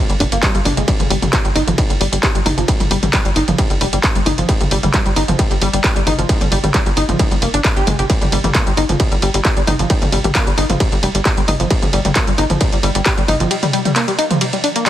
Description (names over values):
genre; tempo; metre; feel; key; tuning
driving peak-time techno; 133 BPM; 4/4; straight; G phrygian; A4 = 440 Hz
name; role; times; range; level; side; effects
tight sequenced synth; riff; 0.1-14.9 s; F3 to G4; -20 LUFS; left 1 dB; chorus, overdrive, sidechain pumping, dub echo
tight sequencer bass; bass; 0.1-13.5 s; F1 to Ab1; -19 LUFS; equal; sidechain pumping
techno drum kit; drums; 0.1-14.9 s; handclaps, hi-hat, ride cymbal, toms; -18 LUFS; equal; none
electronic kick drum; drums; 0.2-13.2 s; none; -17 LUFS; equal; distortion
room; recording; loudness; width
light reverb; heavily compressed radio sound, multiband compression; -13 LUFS; side -12 dB against mid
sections
0.0-14.9 A section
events
none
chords
none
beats
0.43 | 0.88 1.33 1.78 2.23 | 2.68 3.13 3.58 4.04 | 4.49 4.94 5.39 5.84 | 6.29 6.74 7.19 7.64 | 8.10 8.55 9.00 9.45 | 9.90 10.35 10.80 11.25 | 11.71 12.16 12.61 13.06 | 13.51 13.96 14.41 14.86